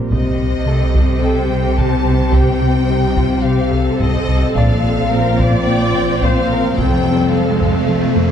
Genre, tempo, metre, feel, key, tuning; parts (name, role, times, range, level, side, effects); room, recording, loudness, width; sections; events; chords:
cinematic, hybrid orchestral and electronic film score; 108 BPM; 4/4; straight; A4 = 436 Hz
airy breathy pad; sustained chords; 0.0-8.3 s; F3 to C5; -24 LUFS; left 1 dB; chorus
bright grand piano; texture; 0.0-8.3 s; G3 to D5; -31 LUFS; left 2 dB
warm symphonic violin section; melody; 0.1-8.3 s; Eb5 to A5; -24 LUFS; left 5 dB
warm symphonic violin section; second line; 0.1-8.3 s; C4 to C5; -26 LUFS; left 4 dB
dark French horn section; sustained chords; 0.1-8.3 s; C4 to A4; -22 LUFS; left 4 dB
smooth synth bass; riff; 0.1-8.3 s; C2 to Bb3; -20 LUFS; left 2 dB
rich studio cello section; bass; 0.1-8.3 s; F2 to C3; -23 LUFS; right 2 dB
warm symphonic double bass section; bass; 0.1-8.3 s; F1 to C2; -20 LUFS; right 3 dB
taiko ensemble; drums; 0.1-8.3 s; -21 LUFS; equal
clear symphonic viola section; accompaniment; 1.2-8.3 s; Eb4 to D5; -23 LUFS; right 2 dB
riser; sound effects; 6.5-8.3 s; -24 LUFS; equal
wet concert hall reverb, RT60 2.1 s; dark, warm production; -13 LUFS; side -8 dB against mid
0.0-8.3 A section
riser 6.5-8.3
0.1 Cm; 4.6 Bbsus2; 6.8 F